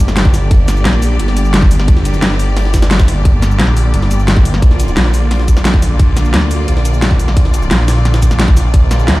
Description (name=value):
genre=dark technical drum and bass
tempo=175 BPM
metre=4/4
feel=straight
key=G minor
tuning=A4 = 440 Hz
part: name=rich symphonic string section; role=sustained chords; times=0.0-9.2 s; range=D3 to D5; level=-20 LUFS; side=left 1 dB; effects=sidechain pumping
part: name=phased detuned saw bass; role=bass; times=0.0-9.2 s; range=G1 to D2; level=-12 LUFS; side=equal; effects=phaser, overdrive
part: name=dubstep drum kit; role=drums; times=0.0-9.2 s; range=hi-hat, shaker, snare drum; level=-16 LUFS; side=equal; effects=none
part: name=electronic kick drum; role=drums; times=0.0-8.8 s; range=none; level=-10 LUFS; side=equal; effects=none
part: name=jungle sampler-style drum kit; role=drums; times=0.0-9.2 s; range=hi-hat, snare drum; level=-25 LUFS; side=equal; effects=high-pass filter on hats, high-pass filter on snare, high-pass filter on room
part: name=noise sweep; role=sound effects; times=8.8-9.2 s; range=none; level=-23 LUFS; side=right 2 dB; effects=none
room=digital ambience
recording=played on a big sound system in a bare room, stone room reverb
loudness=-9 LUFS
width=side -19 dB against mid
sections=0.0-9.2 A section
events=noise sweep 8.8-9.2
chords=0.0 Gm; 4.6 Bb